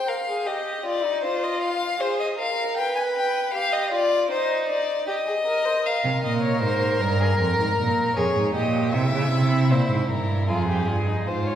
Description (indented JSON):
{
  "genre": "classical, baroque-style fugue for string quartet",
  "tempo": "78 BPM",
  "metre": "4/4",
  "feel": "straight",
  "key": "F minor",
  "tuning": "A4 = 441 Hz",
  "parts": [
    { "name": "warm violin", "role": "melody", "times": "0.0-11.6 s", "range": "Ab4 to Ab5", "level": "-25 LUFS", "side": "left 3 dB", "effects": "none" },
    { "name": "rich violin", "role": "second line", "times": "0.0-11.6 s", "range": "Eb4 to C5", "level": "-26 LUFS", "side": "equal", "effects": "none" },
    { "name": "warm cello", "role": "bass", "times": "6.0-11.6 s", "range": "F2 to Db3", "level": "-22 LUFS", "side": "right 2 dB", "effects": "none" }
  ],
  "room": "wet concert hall reverb, RT60 2.3 s",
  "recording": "heard from further back in the room",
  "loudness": "-21 LUFS",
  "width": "side -10 dB against mid",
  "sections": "0.0-11.6 A section",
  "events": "none",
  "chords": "0.0 Cm (rootless); 1.2 Fmadd11; 2.8 G7/B; 4.3 Cm/Eb; 5.8 Fm; 7.4 Gm7b5/F; 8.9 C7; 10.5 Fm"
}